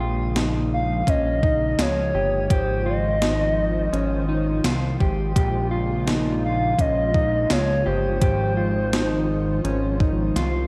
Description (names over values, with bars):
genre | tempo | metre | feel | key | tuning
dream pop | 84 BPM | 4/4 | straight | Bb dorian | A4 = 440 Hz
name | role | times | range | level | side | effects
hollow soft pad | sustained chords | 0.0-10.7 s | Db3 to C5 | -30 LUFS | equal | ensemble chorus, shimmer reverb
mellow electric guitar | arpeggios | 0.0-10.7 s | Db4 to G4 | -30 LUFS | equal | subtle chorus, tape echo, shimmer reverb
fat analog bass | bass | 0.0-10.7 s | G1 to Db2 | -27 LUFS | equal | none
gated 80s digital drum machine | drums | 0.4-10.5 s | hi-hat, kick drum, snare drum | -26 LUFS | equal | gated reverb, gated reverb snare, overdrive
hollow clarinet-like synth lead | melody | 0.7-10.4 s | C5 to F5 | -27 LUFS | equal | chorus, tape echo, shimmer reverb
room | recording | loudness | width
moderate scoring stage reverb, RT60 1.9 s, digital ambience | none | -22 LUFS | mono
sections
0.0-10.7 A section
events
drum fill 10.4-10.7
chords
0.0 Bbm7; 2.5 Fm7/Ab; 5.4 Bbm7; 8.2 Fm7/Ab